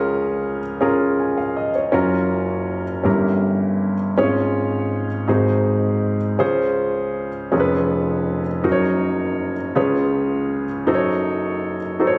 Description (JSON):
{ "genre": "gospel", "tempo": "54 BPM (dotted quarters)", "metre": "6/8", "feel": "straight", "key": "Db major", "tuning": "A4 = 440 Hz", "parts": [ { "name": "dark grand piano", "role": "solo", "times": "0.0-12.2 s", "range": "F1 to Ab5", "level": "-20 LUFS", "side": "equal", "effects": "none" } ], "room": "moderate recital hall reverb, RT60 1.5 s", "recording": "recorded on a phone in the room, studio reverb", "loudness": "-20 LUFS", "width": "mono", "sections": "0.0-12.2 A section", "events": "none", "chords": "0.0 Bbm7/Db; 1.9 Gbmaj7; 3.1 Gdim7; 4.2 Db/Ab; 5.3 Ab7; 6.4 Dbmaj7; 7.5 Db7/F; 8.6 Gb6; 9.8 Db7; 10.9 Gbm6", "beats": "0.82 | 1.94 3.06 | 4.18 5.29 | 6.41 7.53 | 8.64 9.76 | 10.88 12.00" }